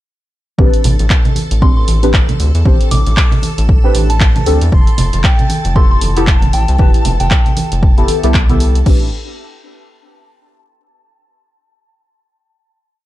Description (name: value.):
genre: deep house.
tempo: 116 BPM.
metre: 4/4.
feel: swing 58% on 16ths.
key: A minor.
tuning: A4 = 439 Hz.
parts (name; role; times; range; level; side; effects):
deep mellow chord stab; stabs; 0.6-9.1 s; B3 to C5; -19 LUFS; left 1 dB; chorus, phaser, sidechain pumping, digital delay.
rubbery square bass; bass; 0.6-9.1 s; F1 to E2; -14 LUFS; equal; sidechain pumping.
electronic kick drum; drums; 0.6-9.0 s; none; -11 LUFS; equal; none.
congas; percussion; 0.6-8.6 s; none; -21 LUFS; right 3 dB; sidechain pumping on perc.
string machine, violins; texture; 0.6-8.9 s; A4 to A5; -28 LUFS; equal; ensemble chorus, sidechain pumping.
punchy analog drum machine; drums; 0.7-9.0 s; crash cymbal, handclaps, hi-hat; -20 LUFS; equal; none.
soft synth bell; melody; 1.6-7.7 s; G5 to D6; -24 LUFS; right 1 dB; chorus, tape echo.
mellow concert flute; melody; 4.7-8.3 s; G5 to C6; -25 LUFS; left 2 dB; dub echo.
room: digital ambience.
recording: dark, warm production.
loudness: -9 LUFS.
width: side -15 dB against mid.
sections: 0.6-8.9 drop; 8.9-10.9 final chord.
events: drop 0.6-8.9.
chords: 0.6 Am11; 4.7 Fmaj9#11; 8.9 Am11.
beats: | 0.58 1.10 1.62 2.14 | 2.65 3.17 3.69 4.21 | 4.72 5.24 5.76 6.28 | 6.79 7.31 7.83 8.34 | 8.86.